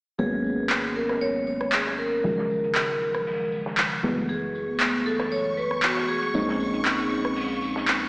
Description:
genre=deep house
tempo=117 BPM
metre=4/4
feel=swing 53% on 16ths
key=unclear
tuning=A4 = 439 Hz
part: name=vibraphone with hard mallets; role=melody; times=0.2-7.6 s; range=F#4 to C#5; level=-28 LUFS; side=equal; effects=none
part: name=mellow FM electric piano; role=stabs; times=0.2-8.1 s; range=C#3 to D#4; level=-28 LUFS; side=equal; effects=chorus, low-pass filter, tape echo
part: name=organ-like FM bass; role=bass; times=0.2-8.1 s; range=D#1 to A#1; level=-44 LUFS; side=equal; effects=none
part: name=warm soul drum kit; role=drums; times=0.2-8.0 s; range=hi-hat, snare drum, tambourine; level=-38 LUFS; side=equal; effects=high-pass filter on hats, low-pass filter on hats, high-pass filter on snare, low-pass filter on snare, high-pass filter on perc, low-pass filter on perc, high-pass filter on room, low-pass filter on room
part: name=electronic handclaps and rim click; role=drums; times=0.7-8.0 s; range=none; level=-26 LUFS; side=equal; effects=none
part: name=string machine, violins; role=texture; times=4.3-8.1 s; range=C#6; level=-32 LUFS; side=equal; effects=ensemble chorus
room=wet lush hall reverb, RT60 2.5 s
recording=played on a big sound system in a bare room, stone room reverb, small speaker sound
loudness=-22 LUFS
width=side -37 dB against mid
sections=0.2-8.1 A section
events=filter sweep on FM electric piano 0.2-8.1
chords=0.2 G#m11; 2.2 D#m11; 4.0 F#m11; 6.3 A#m11

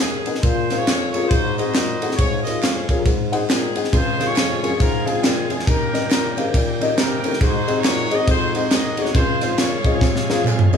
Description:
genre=uptempo gospel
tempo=138 BPM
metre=4/4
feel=swing 62% on 8ths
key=Db major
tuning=A4 = 440 Hz
part: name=clear horn section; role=melody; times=0.0-10.7 s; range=C4 to F5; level=-25 LUFS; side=equal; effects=none
part: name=mellow bassoon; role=bass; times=0.0-10.7 s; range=Db2 to C3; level=-26 LUFS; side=left 1 dB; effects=none
part: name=handclaps and tambourine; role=percussion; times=0.0-10.8 s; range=none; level=-32 LUFS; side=right 1 dB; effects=none
part: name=warm upright piano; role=accompaniment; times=0.3-10.8 s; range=Ab2 to Bb5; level=-24 LUFS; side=left 4 dB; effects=none
part: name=crisp fusion drum kit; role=drums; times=0.3-10.8 s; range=kick drum, ride cymbal, snare drum, toms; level=-19 LUFS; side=equal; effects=none
part: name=bright tonewheel organ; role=sustained chords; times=3.9-10.8 s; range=Db3 to Ab4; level=-28 LUFS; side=right 3 dB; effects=fast rotary speaker, overdrive
room=moderate large studio reverb, RT60 0.8 s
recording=band playing live in one room, studio reverb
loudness=-17 LUFS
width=side -7 dB against mid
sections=0.0-10.8 A section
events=drum fill 10.0-10.8; upright piano fill 10.0-10.8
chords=0.4 Bbm7; 1.3 Ab7; 2.2 Db; 3.1 Ab7; 3.9 Dbmaj7; 5.7 Eb7; 7.4 Ab7; 9.2 Dbmaj7

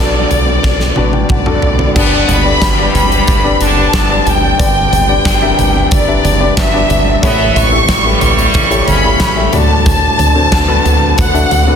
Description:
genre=piano-driven pop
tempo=91 BPM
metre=4/4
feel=straight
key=G major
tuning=A4 = 441 Hz
part: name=rich studio violin section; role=melody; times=0.0-11.8 s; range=D5 to C#6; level=-14 LUFS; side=equal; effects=none
part: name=warm upright piano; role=accompaniment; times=0.0-11.8 s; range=G2 to B5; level=-17 LUFS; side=left 5 dB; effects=none
part: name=round analog bass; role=bass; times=0.0-11.8 s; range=F#1 to D2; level=-16 LUFS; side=equal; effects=none
part: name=huge arena drum kit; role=drums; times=0.3-11.7 s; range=crash cymbal, handclaps, hi-hat, kick drum, snare drum, toms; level=-14 LUFS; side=right 1 dB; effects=none
part: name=muted French horn section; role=second line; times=2.0-9.5 s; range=G2 to D4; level=-19 LUFS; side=right 2 dB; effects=none
room=light reverb, small room ambience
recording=dense, heavily limited modern master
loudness=-9 LUFS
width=side -7 dB against mid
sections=0.0-2.0 A section; 2.0-11.8 B section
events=drum fill 0.6-2.0; upright piano fill 0.6-2.0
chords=0.0 Bm; 2.0 G; 7.2 A7; 9.5 D

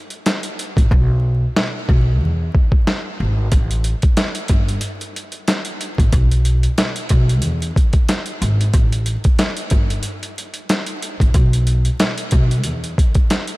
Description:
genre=hip hop, boom-bap hip-hop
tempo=92 BPM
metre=4/4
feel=swing 56% on 16ths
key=unclear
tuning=A4 = 440 Hz
part: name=boom bap sampler-style drum kit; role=drums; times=0.1-13.6 s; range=hi-hat, kick drum, snare drum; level=-17 LUFS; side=equal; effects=none
part: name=upright bass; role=bass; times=0.8-12.9 s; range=G1 to E2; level=-17 LUFS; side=equal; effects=none
room=little or no reverb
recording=vinyl crackle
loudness=-15 LUFS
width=side -20 dB against mid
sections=0.0-13.6 A section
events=hi-hats muted 0.9-3.5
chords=none

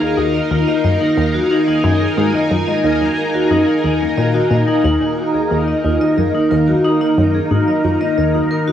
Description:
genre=ambient, sequencer-driven space music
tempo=90 BPM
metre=4/4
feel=straight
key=Eb minor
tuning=A4 = 440 Hz
part: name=string machine, full ensemble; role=sustained chords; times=0.0-8.7 s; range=Eb4 to Ab5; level=-17 LUFS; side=right 1 dB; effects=phaser, ensemble chorus, cassette tape
part: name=vibraphone with hard mallets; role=arpeggios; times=0.0-8.7 s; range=Bb3 to Eb5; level=-18 LUFS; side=left 2 dB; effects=auto-pan, cassette tape, analog delay
part: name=tight sequenced synth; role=riff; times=0.2-8.4 s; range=Eb2 to Bb2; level=-19 LUFS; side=equal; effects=chorus, cassette tape, analog delay
room=wet studio reverb, RT60 0.5 s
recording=home recording on cassette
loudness=-13 LUFS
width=side -10 dB against mid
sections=0.0-8.7 A section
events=none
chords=0.0 Ebmadd9

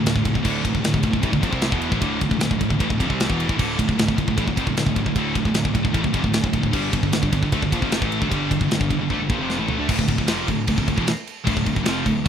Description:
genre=heavy metal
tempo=152 BPM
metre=4/4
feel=straight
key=D minor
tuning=A4 = 437 Hz
part: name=scooped high-gain guitar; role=riff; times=0.0-12.3 s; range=D2 to C4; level=-26 LUFS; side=left 10 dB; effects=distortion
part: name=scooped high-gain guitar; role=riff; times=0.0-12.3 s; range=D2 to C4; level=-26 LUFS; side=right 9 dB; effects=distortion
part: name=thick fuzz guitar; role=riff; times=0.0-12.3 s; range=D2 to C4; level=-25 LUFS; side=equal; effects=distortion
part: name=fuzz picked electric bass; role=bass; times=0.0-12.3 s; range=D1 to D2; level=-32 LUFS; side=equal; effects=none
part: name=tight metal drum kit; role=drums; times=0.1-12.3 s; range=crash cymbal, kick drum, ride cymbal, snare drum, toms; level=-23 LUFS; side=equal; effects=none
room=little or no reverb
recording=rough home demo mix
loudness=-19 LUFS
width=side -8 dB against mid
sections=0.0-9.9 A section; 9.9-12.3 B section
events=drum fill 9.1-9.9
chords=0.0 Dm; 6.7 G5; 9.9 Dm

